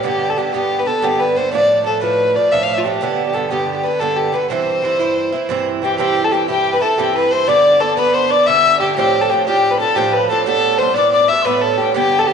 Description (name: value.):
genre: celtic folk.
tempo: 121 BPM (dotted quarters).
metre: 9/8.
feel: straight.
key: unclear.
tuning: A4 = 440 Hz.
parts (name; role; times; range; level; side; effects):
dark fiddle; melody; 0.0-12.3 s; F4 to F5; -15 LUFS; left 1 dB; slapback echo.
Irish bouzouki; accompaniment; 0.0-12.3 s; G2 to E4; -20 LUFS; right 8 dB; none.
tin whistle; second line; 5.8-12.3 s; G5 to E6; -19 LUFS; left 9 dB; none.
room: wet echo chamber reverb, RT60 1.9 s, small room ambience.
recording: 1960s-style stereo with parts hard left and right, nothing above 10.5 kHz.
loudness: -13 LUFS.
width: side -6 dB against mid.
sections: 0.0-6.0 A section; 6.0-12.3 A section.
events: none.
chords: 0.0 G; 1.5 Dm; 3.0 G; 4.5 C; 7.5 G; 9.0 Dm7/A; 10.5 Gadd9.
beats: | 0.04 0.54 1.03 | 1.53 2.02 2.52 | 3.02 3.51 4.01 | 4.51 5.00 5.50 | 6.00 6.49 6.99 | 7.49 7.98 8.48 | 8.97 9.47 9.97 | 10.47 10.96 11.46 | 11.96.